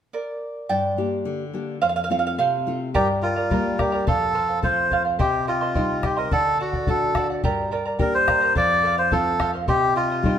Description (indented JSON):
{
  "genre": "andean folk, Andean ensemble",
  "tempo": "107 BPM",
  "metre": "2/4",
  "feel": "straight",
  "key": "G minor",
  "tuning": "A4 = 439 Hz",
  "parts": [
    { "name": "charango", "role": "accompaniment", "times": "0.1-10.4 s", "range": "G4 to C6", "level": "-25 LUFS", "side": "right 3 dB", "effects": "none" },
    { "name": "nylon-string guitar", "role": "accompaniment", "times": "0.7-10.4 s", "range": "F2 to G4", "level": "-28 LUFS", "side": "left 3 dB", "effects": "none" },
    { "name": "bombo", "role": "percussion", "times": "2.9-10.4 s", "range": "none", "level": "-27 LUFS", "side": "left 1 dB", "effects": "none" },
    { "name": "melodica", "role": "melody", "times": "3.0-10.4 s", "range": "F4 to D5", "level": "-21 LUFS", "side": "equal", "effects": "none" }
  ],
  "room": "wet stone room reverb, RT60 1.4 s",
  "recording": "band playing live in one room",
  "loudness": "-19 LUFS",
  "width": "side -9 dB against mid",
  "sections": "0.7-2.9 A section; 2.9-10.4 B section",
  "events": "charango solo 0.7-2.9",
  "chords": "0.0 N.C.; 0.7 Gm; 1.8 F; 2.9 Gm; 4.1 F; 5.2 Cm; 6.3 D; 7.4 Gm; 8.6 F; 9.7 Cm"
}